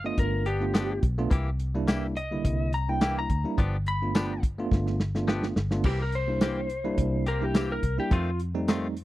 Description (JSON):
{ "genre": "straight-eighth soul blues", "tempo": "106 BPM", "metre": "4/4", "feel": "straight", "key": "C mixolydian", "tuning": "A4 = 440 Hz", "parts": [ { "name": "lightly driven lead guitar", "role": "melody", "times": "0.0-8.4 s", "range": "F4 to B5", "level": "-31 LUFS", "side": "left 2 dB", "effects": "none" }, { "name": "bell-like tine electric piano", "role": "accompaniment", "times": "0.0-8.9 s", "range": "D3 to F4", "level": "-31 LUFS", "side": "right 3 dB", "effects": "fast stereo tremolo" }, { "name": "vintage muted fingered electric bass", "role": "bass", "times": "0.0-9.0 s", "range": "G1 to F2", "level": "-29 LUFS", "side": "equal", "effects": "none" }, { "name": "warm soul drum kit", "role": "drums", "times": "0.2-9.0 s", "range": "crash cymbal, hi-hat, kick drum, snare drum, tambourine", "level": "-25 LUFS", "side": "equal", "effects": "none" }, { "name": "direct-recorded clean electric guitar", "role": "stabs", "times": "0.5-8.9 s", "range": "Eb3 to G4", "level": "-34 LUFS", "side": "left 3 dB", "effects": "none" } ], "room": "little or no reverb", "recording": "dry, close 1970s-style studio recording", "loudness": "-24 LUFS", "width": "side -16 dB against mid", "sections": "0.0-5.8 A section; 5.8-9.0 B section", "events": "drum fill 4.7-5.8; lead electric guitar solo 5.8-9.0", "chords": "0.0 G7; 1.3 C7; 3.6 G7; 5.8 C7; 8.1 F7" }